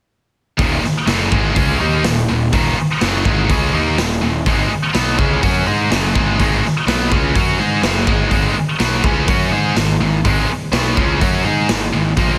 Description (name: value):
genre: hard rock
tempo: 124 BPM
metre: 4/4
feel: straight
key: unclear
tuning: A4 = 440 Hz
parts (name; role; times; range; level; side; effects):
- scooped high-gain guitar; riff; 0.6-12.4 s; Eb2 to Ab4; -19 LUFS; equal; distortion
- fuzz picked electric bass; bass; 0.6-12.4 s; Eb1 to Ab2; -22 LUFS; equal; overdrive
- raw garage drum kit; drums; 0.6-12.3 s; hi-hat, kick drum, snare drum; -21 LUFS; equal; none
room: light reverb, studio reverb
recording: none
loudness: -16 LUFS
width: mono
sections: 0.6-12.4 A section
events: none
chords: 0.6 Eb5; 4.5 Ab5